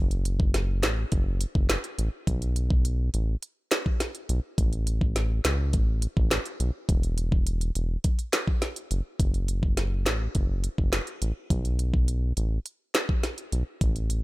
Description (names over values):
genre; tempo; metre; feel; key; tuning
dancehall; 104 BPM; 4/4; straight; unclear; A4 = 440 Hz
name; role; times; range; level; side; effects
round analog bass; bass; 0.0-14.2 s; E1 to C#2; -26 LUFS; equal; none
island pop drum kit; drums; 0.1-14.2 s; handclaps, hi-hat, kick drum, snare drum; -25 LUFS; equal; none
room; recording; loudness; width
digital ambience; none; -24 LUFS; side -20 dB against mid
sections
0.0-9.2 A section; 9.2-14.2 B section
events
none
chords
none